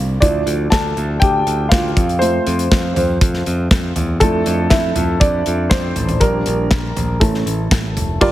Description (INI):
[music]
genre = piano-driven pop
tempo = 120 BPM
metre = 4/4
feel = straight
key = D minor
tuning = A4 = 440 Hz
[part]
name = dark baby grand piano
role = accompaniment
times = 0.0-8.3 s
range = G2 to A5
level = -18 LUFS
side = equal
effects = none
[part]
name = modern bright picked electric bass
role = bass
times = 0.0-8.3 s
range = F1 to F2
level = -20 LUFS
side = equal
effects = none
[part]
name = modern studio drum kit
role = drums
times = 0.2-8.3 s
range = crash cymbal, hi-hat, kick drum, snare drum, toms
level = -17 LUFS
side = equal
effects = none
[sound]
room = light reverb, studio reverb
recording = heavily compressed radio sound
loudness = -14 LUFS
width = side -14 dB against mid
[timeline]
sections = 0.0-8.2 A section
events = grand piano solo 0.0-8.2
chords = 0.2 Dmadd9; 2.0 F; 4.2 Dmadd9/F; 6.2 Bb6; 7.2 A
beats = | 0.22 0.72 1.22 1.72 | 2.22 2.71 3.21 3.71 | 4.21 4.71 5.21 5.71 | 6.21 6.71 7.21 7.71 | 8.21